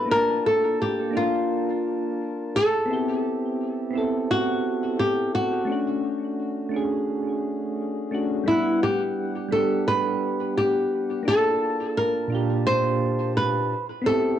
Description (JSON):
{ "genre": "chillout", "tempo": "86 BPM", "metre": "4/4", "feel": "straight", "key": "unclear", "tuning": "A4 = 440 Hz", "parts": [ { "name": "flamenco guitar", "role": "melody", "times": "0.0-14.4 s", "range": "E4 to C5", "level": "-23 LUFS", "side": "equal", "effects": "vintage 12-bit sampler grit, cassette tape, plate reverb, analog delay" }, { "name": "soft electric-piano-like synth keys", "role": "accompaniment", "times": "0.0-14.4 s", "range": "Bb2 to A5", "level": "-26 LUFS", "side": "moving between left 4 dB and right 4 dB", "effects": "chorus, tremolo, auto-pan, low-pass filter, cassette tape, plate reverb, analog delay" } ], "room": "wet small room reverb, RT60 0.5 s", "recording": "home recording on cassette", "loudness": "-22 LUFS", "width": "side -10 dB against mid", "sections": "0.0-8.5 A section; 8.5-14.4 B section", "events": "none", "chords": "0.1 A#maj7; 2.5 Am9; 5.7 Dmaj7#11/A; 8.5 Gmaj7; 11.3 Gm9; 13.7 Am9" }